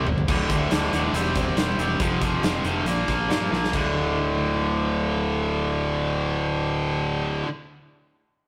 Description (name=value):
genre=hard rock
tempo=138 BPM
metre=4/4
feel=straight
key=D minor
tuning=A4 = 439 Hz
part: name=heavy high-gain guitar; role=riff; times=0.0-7.5 s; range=D2 to C4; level=-28 LUFS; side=equal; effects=distortion
part: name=overdriven semi-hollow guitar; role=riff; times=0.0-7.5 s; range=D2 to C4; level=-31 LUFS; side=equal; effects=none
part: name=fuzz fingered electric bass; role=bass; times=0.0-7.4 s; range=D1 to G2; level=-30 LUFS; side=equal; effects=overdrive
part: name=huge arena drum kit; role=drums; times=0.1-3.8 s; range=crash cymbal, hi-hat, kick drum, snare drum, toms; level=-30 LUFS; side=equal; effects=none
room=moderate stone room reverb, RT60 1.4 s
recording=rough rehearsal-room recording, tube saturation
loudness=-24 LUFS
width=mono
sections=0.3-3.7 A section; 3.7-7.2 B section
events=drum fill 0.0, 3.5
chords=0.3 D5; 1.1 C/E; 2.0 F5; 2.9 Bb5; 3.7 D5